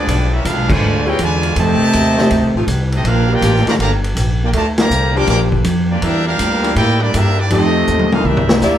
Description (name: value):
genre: jazz, big band swing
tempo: 162 BPM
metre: 4/4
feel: swing 66% on 8ths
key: F major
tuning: A4 = 440 Hz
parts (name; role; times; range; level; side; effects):
- brilliant trumpet section; melody; 0.0-8.8 s; Bb3 to D6; -19 LUFS; equal; none
- clear trombone section; second line; 0.0-8.8 s; C3 to G4; -19 LUFS; right 1 dB; none
- upright bass; bass; 0.0-8.8 s; G1 to A2; -17 LUFS; equal; none
- vintage drum kit; drums; 0.1-8.7 s; crash cymbal, hi-hat, kick drum, ride cymbal, snare drum, toms; -20 LUFS; equal; none
- warm saxophone section; sustained chords; 1.1-8.6 s; E3 to Bb4; -22 LUFS; left 3 dB; none
- clear saxophone section; melody; 8.6-8.8 s; Bb3 to D5; -14 LUFS; left 1 dB; none
room: wet club reverb, RT60 0.6 s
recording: heard from further back in the room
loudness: -12 LUFS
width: side -11 dB against mid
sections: 0.0-8.8 A section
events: band accent 0.6, 4.7; drum fill 7.9-8.6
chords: 0.1 Bdim7; 1.6 F9; 3.0 Gm7; 6.0 C9 (rootless); 7.5 F9; 8.2 C9